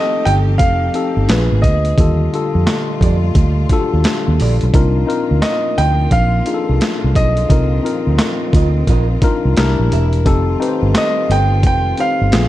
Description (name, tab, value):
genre	R&B, neo-soul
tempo	87 BPM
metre	4/4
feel	swing 64% on 16ths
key	C dorian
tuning	A4 = 440 Hz
part	warm concert grand piano	melody	0.0-12.5 s	Eb5 to G5	-20 LUFS	right 1 dB	slapback echo
part	mellow tine electric piano	accompaniment	0.0-12.5 s	D3 to C5	-20 LUFS	left 4 dB	none
part	bright studio string section	sustained chords	0.0-12.5 s	Bb2 to Ab4	-27 LUFS	right 1 dB	none
part	electric guitar at the edge of break-up	second line	0.3-11.4 s	F4 to E5	-27 LUFS	right 9 dB	slapback echo
part	vintage muted fingered electric bass	bass	0.3-12.5 s	E1 to F2	-15 LUFS	equal	none
part	boom bap sampler-style drum kit	drums	0.3-12.5 s	handclaps, hi-hat, kick drum, snare drum	-16 LUFS	equal	none
room	little or no reverb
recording	dark, warm production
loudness	-12 LUFS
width	side -14 dB against mid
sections	0.0-12.5 A section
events	none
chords	0.0 F9; 1.3 Bb7b9; 2.0 Ebmaj9#11; 4.7 Cm11; 9.6 C7; 10.3 F9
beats	0.60 1.29 | 1.98 2.67 3.36 4.05 | 4.74 5.43 6.12 6.81 | 7.50 8.19 8.88 9.57 | 10.26 10.95 11.64 12.33